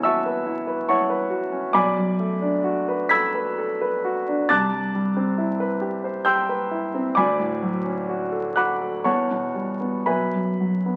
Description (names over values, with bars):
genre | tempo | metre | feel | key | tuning
classical, impressionist solo piano | 57-70 BPM | 3/4 | rubato | B dorian | A4 = 440 Hz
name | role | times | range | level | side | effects
warm grand piano | solo | 0.0-11.0 s | B1 to B6 | -23 LUFS | equal | none
room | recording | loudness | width
moderate large studio reverb, RT60 1.1 s | very old 78 rpm record, vinyl crackle | -23 LUFS | mono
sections
0.0-11.0 A section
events
none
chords
0.0 E69; 1.7 Bm7; 4.5 Cmaj7; 7.2 Dmaj7; 9.1 Em6; 10.1 B5